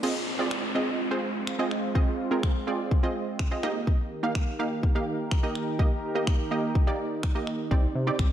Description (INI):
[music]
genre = dance-pop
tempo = 125 BPM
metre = 4/4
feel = straight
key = unclear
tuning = A4 = 442 Hz
[part]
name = wide unison pluck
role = accompaniment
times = 0.0-8.3 s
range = Bb3 to F5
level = -29 LUFS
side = right 2 dB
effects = sidechain pumping
[part]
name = sweeping resonant pad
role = sustained chords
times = 0.0-8.3 s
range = C3 to Bb4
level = -34 LUFS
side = right 1 dB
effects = chorus, sidechain pumping
[part]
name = house drum kit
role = drums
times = 0.0-8.3 s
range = crash cymbal, finger snaps, kick drum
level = -26 LUFS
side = equal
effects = none
[part]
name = downlifter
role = sound effects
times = 0.0-3.9 s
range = none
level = -36 LUFS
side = equal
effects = none
[part]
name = chorused synth bass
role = bass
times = 7.7-8.3 s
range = C2 to C3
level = -28 LUFS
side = equal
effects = sidechain pumping
[sound]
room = light reverb, digital ambience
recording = dark, warm production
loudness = -25 LUFS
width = side -10 dB against mid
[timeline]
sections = 0.0-8.3 A section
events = none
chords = 0.0 Ab6; 3.6 Eb; 7.7 Cmadd9